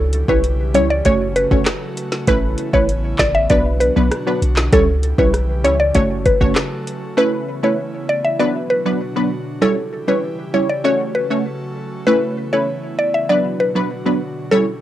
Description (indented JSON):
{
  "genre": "dancehall",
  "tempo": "98 BPM",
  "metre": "4/4",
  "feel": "straight",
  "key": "B minor",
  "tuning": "A4 = 440 Hz",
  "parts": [
    { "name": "airy breathy pad", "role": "sustained chords", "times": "0.0-14.8 s", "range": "B2 to A4", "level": "-28 LUFS", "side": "equal", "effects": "chorus, sidechain pumping, cassette tape" },
    { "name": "warm 808-style bass", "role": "bass", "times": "0.0-6.5 s", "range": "F#1 to C#2", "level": "-19 LUFS", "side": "equal", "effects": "none" },
    { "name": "afro-pop drum kit", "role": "drums", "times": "0.1-7.0 s", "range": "handclaps, hi-hat, kick drum, rim click, snare drum", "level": "-19 LUFS", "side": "equal", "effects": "overdrive, cassette tape" },
    { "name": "mallet-like synth pluck", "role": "melody", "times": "0.3-14.6 s", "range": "A4 to E5", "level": "-18 LUFS", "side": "equal", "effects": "chorus, tape echo" },
    { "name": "punchy chord stab", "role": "accompaniment", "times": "0.3-14.7 s", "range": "F#3 to C#5", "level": "-19 LUFS", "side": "right 1 dB", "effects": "chorus, cassette tape" }
  ],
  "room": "light reverb, digital ambience",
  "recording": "home recording on cassette",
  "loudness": "-15 LUFS",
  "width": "side -13 dB against mid",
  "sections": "0.0-7.2 A section; 7.2-14.8 A section",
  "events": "none",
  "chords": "0.0 C#dim; 1.1 F#m; 2.3 Aadd9; 3.5 Bm; 4.7 C#dim; 6.0 F#m; 7.2 Aadd9; 8.4 Bm; 9.6 C#dim; 10.8 F#m; 12.1 Aadd9; 13.3 Bm",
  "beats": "0.44 1.05 1.66 | 2.28 2.89 3.50 4.11 | 4.72 5.34 5.95 6.56 | 7.17 7.79 8.40 9.01 | 9.62 10.24 10.85 11.46 | 12.07 12.69 13.30 13.91 | 14.52"
}